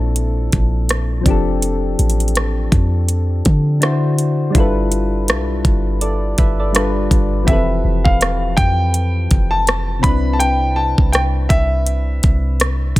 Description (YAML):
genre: contemporary R&B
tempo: 82 BPM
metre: 4/4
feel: swing 58% on 16ths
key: unclear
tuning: A4 = 440 Hz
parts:
  - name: soft electric-piano-like synth keys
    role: accompaniment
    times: 0.0-13.0 s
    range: Bb2 to E5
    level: -21 LUFS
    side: left 2 dB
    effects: chorus
  - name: warm 808-style bass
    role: bass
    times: 0.0-13.0 s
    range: E1 to D3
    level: -18 LUFS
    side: equal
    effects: none
  - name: smooth R&B drum kit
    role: drums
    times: 0.2-13.0 s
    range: hi-hat, kick drum, rim click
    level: -16 LUFS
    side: equal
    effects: none
  - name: warm grand piano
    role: melody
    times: 7.5-12.9 s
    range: E5 to B5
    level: -20 LUFS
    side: equal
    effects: tape echo
room: digital ambience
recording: none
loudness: -14 LUFS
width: side -17 dB against mid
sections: 0.0-7.5 A section; 7.5-13.0 B section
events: none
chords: 0.0 Bbmaj9#11; 1.3 F69; 3.8 D7; 4.5 G13; 6.7 G9; 7.5 Fmaj9#11; 10.0 Cmaj9